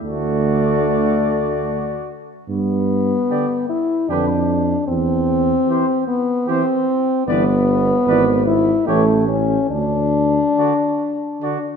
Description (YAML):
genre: classical, brass quintet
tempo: 74 BPM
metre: 3/4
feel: rubato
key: unclear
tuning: A4 = 440 Hz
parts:
  - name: mellow trumpet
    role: melody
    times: 0.0-11.6 s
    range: B4 to D5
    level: -27 LUFS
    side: left 11 dB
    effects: none
  - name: mellow trumpet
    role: second line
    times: 0.0-11.6 s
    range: F#4 to B4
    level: -28 LUFS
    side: right 8 dB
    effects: none
  - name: warm French horn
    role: accompaniment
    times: 0.0-11.8 s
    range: A3 to E4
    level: -18 LUFS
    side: left 2 dB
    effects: none
  - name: warm euphonium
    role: accompaniment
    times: 0.0-11.6 s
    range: D3 to E3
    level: -28 LUFS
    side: right 6 dB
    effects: none
  - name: warm tuba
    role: bass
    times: 0.0-10.4 s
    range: G1 to G2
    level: -21 LUFS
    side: right 4 dB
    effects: none
room: moderate concert hall reverb, RT60 2.1 s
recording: minimal, uncompressed stereo recording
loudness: -16 LUFS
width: side -6 dB against mid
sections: 0.0-11.8 A section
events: none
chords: 0.0 D; 2.5 G; 4.1 G7/F (rootless); 4.9 C/E; 7.3 Em7/G; 8.1 E/G#; 8.9 A; 9.7 N.C.